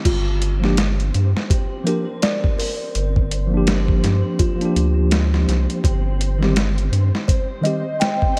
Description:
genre	trip hop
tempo	83 BPM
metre	4/4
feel	swing 59% on 16ths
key	G minor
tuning	A4 = 440 Hz
part	music box	arpeggios	0.1-8.4 s	F4 to G5	-30 LUFS	equal	tape echo
part	round analog bass	bass	0.1-7.1 s	G1 to G2	-21 LUFS	equal	none
part	dusty soul sampler-style drum kit	drums	0.1-8.4 s	crash cymbal, hi-hat, kick drum, snare drum	-23 LUFS	equal	overdrive, small room reverb
part	flickering grainy texture	texture	0.6-8.4 s	C4 to C5	-37 LUFS	equal	built-in reverb
part	mellow tine electric piano	accompaniment	0.6-7.8 s	Eb3 to G4	-26 LUFS	equal	tremolo, tape echo
room	light reverb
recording	none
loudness	-19 LUFS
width	mono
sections	0.1-8.4 A section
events	none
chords	0.1 Gm7; 5.8 Cm/G

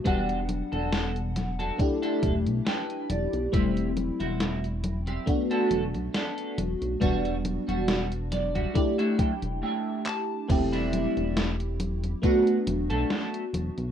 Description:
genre	vaporwave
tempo	69 BPM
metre	4/4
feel	swing 54% on 16ths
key	E minor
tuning	A4 = 439 Hz
part	FM electric piano with soft pad layer	accompaniment	0.0-13.9 s	G3 to F#5	-28 LUFS	left 1 dB	phaser, analog chorus, analog delay
part	clean electric guitar	riff	0.1-13.4 s	G3 to A5	-32 LUFS	right 2 dB	analog chorus, vintage 12-bit sampler grit, analog delay
part	chorused synth bass	bass	0.1-13.9 s	E1 to B1	-31 LUFS	equal	none
part	electronic kick drum	drums	0.1-12.4 s	none	-26 LUFS	equal	none
part	gated 80s digital drum machine	drums	0.1-13.9 s	congas, crash cymbal, handclaps, hi-hat, snare drum	-33 LUFS	left 1 dB	gated reverb, gated reverb snare
room	moderate studio reverb, RT60 0.6 s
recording	rough home demo mix, cassette tape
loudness	-25 LUFS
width	side -9 dB against mid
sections	0.0-10.5 A section; 10.5-13.9 B section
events	clean electric guitar fill 2.2-3.5, 7.9-10.5; break 9.6-10.5; drum fill 10.1-10.5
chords	0.1 Em9; 1.8 G69/E; 3.5 Am7/E; 5.3 Bm7/E; 7.0 Em9; 8.8 A7sus4; 10.5 D9sus4/E; 12.2 Bm7/E

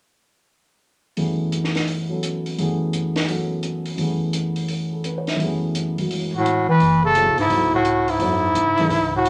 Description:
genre	modal jazz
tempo	170 BPM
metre	4/4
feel	swing 65% on 8ths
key	F# minor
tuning	A4 = 435 Hz
part	dark upright piano	accompaniment	1.2-8.9 s	F#2 to E5	-26 LUFS	equal	none
part	compact cocktail drum kit	drums	1.2-9.3 s	hi-hat, snare drum	-32 LUFS	equal	none
part	breathy trumpet	melody	6.3-9.3 s	E4 to B4	-20 LUFS	equal	none
part	clear bass clarinet	second line	6.3-9.3 s	G#2 to E3	-23 LUFS	equal	none
part	upright bass	bass	6.8-9.3 s	F#1 to C#3	-33 LUFS	equal	none
room	wet club reverb, RT60 0.7 s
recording	none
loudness	-21 LUFS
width	mono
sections	1.2-6.8 A section; 6.8-9.3 B section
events	none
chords	1.2 F#m11

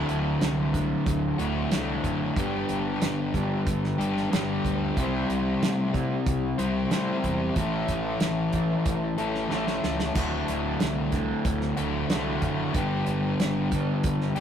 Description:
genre	classic rock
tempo	92 BPM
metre	4/4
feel	straight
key	D mixolydian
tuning	A4 = 440 Hz
part	overdriven semi-hollow guitar	riff	0.0-14.4 s	D2 to C4	-30 LUFS	right 2 dB	none
part	sludgy distorted guitar	riff	0.0-14.4 s	D2 to C5	-27 LUFS	left 2 dB	overdrive
part	growling fingered electric bass	bass	0.0-14.4 s	D1 to A2	-35 LUFS	right 1 dB	overdrive
part	damped 70s drum kit	drums	0.1-14.4 s	hi-hat, kick drum, snare drum, splash cymbal	-29 LUFS	right 1 dB	none
room	moderate studio reverb, RT60 0.6 s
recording	rough rehearsal-room recording, warm saturation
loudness	-24 LUFS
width	side -8 dB against mid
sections	0.0-14.4 A section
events	drum fill 9.5-10.2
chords	0.0 D; 2.4 G; 5.0 C; 7.6 A; 10.2 D; 12.8 G

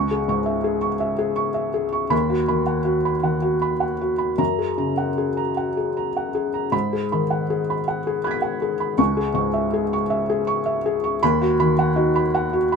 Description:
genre	neoclassical minimalist piano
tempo	53 BPM (dotted quarters)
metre	6/8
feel	rubato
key	unclear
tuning	A4 = 440 Hz
part	felt-muted upright piano	solo	0.0-12.8 s	C#2 to B6	-19 LUFS	equal	none
room	moderate studio reverb, RT60 0.6 s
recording	minimal, uncompressed stereo recording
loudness	-19 LUFS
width	side -5 dB against mid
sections	0.0-12.8 A section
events	none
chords	0.0 C#m; 2.1 B/D#; 4.4 F#add9; 6.7 G#m7; 9.0 C#m; 11.2 B/D#

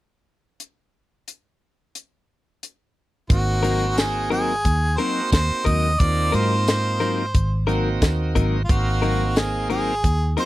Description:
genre	straight-eighth soul blues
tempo	89 BPM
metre	4/4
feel	straight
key	Ab mixolydian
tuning	A4 = 440 Hz
part	tight funk drum kit	drums	0.6-10.5 s	hi-hat, kick drum, snare drum, tambourine	-20 LUFS	equal	none
part	warm harmonica	melody	3.3-10.5 s	F4 to Eb5	-24 LUFS	equal	none
part	bright tonewheel organ	accompaniment	3.3-10.5 s	Bb3 to F5	-27 LUFS	right 4 dB	overdrive, slow rotary speaker
part	vintage muted fingered electric bass	bass	3.3-10.3 s	Ab1 to Ab2	-22 LUFS	equal	none
part	direct-recorded clean electric guitar	stabs	3.6-10.5 s	Gb3 to Bb4	-24 LUFS	left 6 dB	none
room	little or no reverb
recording	dry, close 1970s-style studio recording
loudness	-18 LUFS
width	side -16 dB against mid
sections	0.6-3.3 A section; 3.3-10.5 B section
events	none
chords	0.6 N.C.; 3.3 Ab9

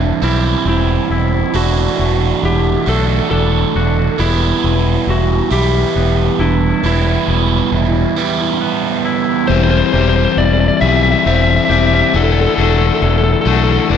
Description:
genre	post-rock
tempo	45 BPM (dotted quarters)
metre	6/8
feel	straight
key	unclear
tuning	A4 = 440 Hz
part	lightly driven lead guitar	melody	0.0-13.9 s	D4 to E5	-18 LUFS	left 3 dB	slapback echo, analog delay
part	twangy electric guitar	arpeggios	0.0-14.0 s	E2 to G4	-24 LUFS	left 3 dB	slapback echo, analog delay
part	vibraphone with soft mallets	arpeggios	0.0-14.0 s	A4 to F#5	-27 LUFS	right 3 dB	slapback echo, analog delay
part	overdriven electric guitar	riff	0.0-9.5 s	E3 to F#4	-17 LUFS	right 10 dB	phaser
part	growling fingered electric bass	bass	0.0-14.0 s	E1 to B1	-16 LUFS	equal	overdrive
part	overdriven semi-hollow guitar	riff	9.5-14.0 s	E3 to G4	-15 LUFS	left 11 dB	slapback echo
room	moderate lush hall reverb, RT60 2.1 s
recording	big arena sound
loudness	-12 LUFS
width	side -8 dB against mid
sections	0.0-9.5 A section; 9.5-14.0 B section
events	none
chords	0.0 C/E; 1.6 D/E; 4.2 Em; 9.5 C/E; 12.1 D/E

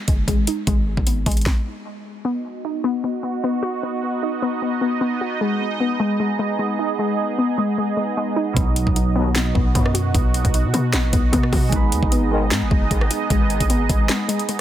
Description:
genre	hip hop, trap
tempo	152 BPM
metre	4/4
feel	half-time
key	B major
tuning	A4 = 439 Hz
part	warbly dusty pluck	arpeggios	0.0-14.6 s	G#3 to F#4	-23 LUFS	left 2 dB	chorus, low-pass filter, tape echo
part	hard-hitting 808-style bass	bass	0.1-1.5, 8.6-14.1 s	F#1 to B2	-22 LUFS	equal	none
part	trap drum kit	drums	0.1-1.6, 8.6-14.6 s	handclaps, hi-hat, kick drum, rim click, snare drum	-20 LUFS	equal	none
part	sweeping resonant pad	sustained chords	2.2-14.6 s	B3 to D#5	-25 LUFS	right 5 dB	chorus
part	concert harp	accompaniment	8.5-14.6 s	B2 to B4	-26 LUFS	right 4 dB	low-pass filter
part	dark brass ensemble	stabs	9.2-9.3, 12.3-12.4 s	B1 to F#3	-31 LUFS	left 1 dB	none
room	little or no reverb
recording	dense, heavily limited modern master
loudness	-18 LUFS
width	side -11 dB against mid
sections	0.0-2.3 A section; 2.3-14.6 B section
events	stop 1.5-2.3; break 14.1-14.6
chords	0.0 G#m; 2.3 B; 5.4 G#m; 8.6 B; 11.7 G#m

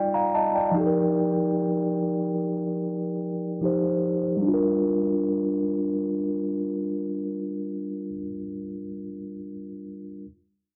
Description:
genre	R&B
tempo	73 BPM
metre	4/4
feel	straight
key	G minor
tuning	A4 = 443 Hz
part	mellow tine electric piano	solo	0.0-10.3 s	F3 to Bb5	-27 LUFS	equal	low-pass filter, cassette tape
room	moderate small room reverb, RT60 0.6 s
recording	home recording on cassette, lossy compression artefacts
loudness	-26 LUFS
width	mono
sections	0.0-4.5 A section; 4.5-7.7 B section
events	filter sweep on tine electric piano 0.0-4.5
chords	0.0 Ebmaj7/G; 0.8 F9sus4; 4.5 Gm7

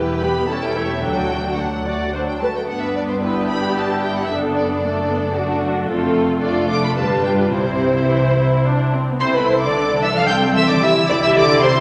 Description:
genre	quick classical-period movement for string orchestra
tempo	112 BPM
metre	3/4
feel	rubato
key	C major from 5.9 s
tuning	A4 = 442 Hz
part	rich symphonic violin section	melody	0.0-11.8 s	B4 to G6	-27 LUFS	equal	none
part	dark symphonic violin section	second line	0.0-11.8 s	B3 to G5	-23 LUFS	equal	none
part	dark symphonic viola section	accompaniment	0.0-11.8 s	E3 to A4	-24 LUFS	equal	none
part	dark symphonic cello section	bass	0.0-11.8 s	D2 to G3	-25 LUFS	equal	none
part	warm symphonic double bass section	bass	0.0-11.8 s	E1 to D2	-30 LUFS	equal	none
room	wet concert hall reverb, RT60 1.8 s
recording	none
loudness	-18 LUFS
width	mono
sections	0.0-9.2 A section; 9.2-11.8 B section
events	none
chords	0.0 Em; 0.5 A7/E; 1.0 D; 2.7 G; 4.3 D/F#; 5.9 F; 6.4 Dm/F; 7.0 G7; 7.5 C; 10.8 G5/C

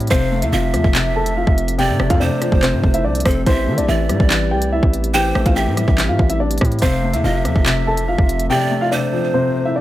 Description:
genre	hip hop, drill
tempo	143 BPM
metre	4/4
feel	half-time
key	unclear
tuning	A4 = 438 Hz
part	dark baby grand piano	accompaniment	0.0-9.8 s	C3 to A3	-23 LUFS	left 4 dB	none
part	pipe organ, stopped flute	sustained chords	0.0-9.8 s	E3 to A4	-28 LUFS	right 2 dB	none
part	distorted 808-style bass	bass	0.0-8.5 s	F1 to E3	-20 LUFS	equal	distortion
part	drill drum kit	drums	0.0-8.5 s	handclaps, hi-hat, kick drum, rim click	-18 LUFS	equal	none
part	dark baby grand piano	melody	0.1-9.8 s	C4 to A5	-21 LUFS	equal	none
part	breathy bright large pan pipes	second line	0.1-9.8 s	A4 to F5	-24 LUFS	right 5 dB	digital delay
room	small room ambience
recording	none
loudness	-14 LUFS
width	side -14 dB against mid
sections	0.0-9.8 A section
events	drums muted 8.5-9.8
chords	0.1 F; 3.5 Am7; 6.8 F

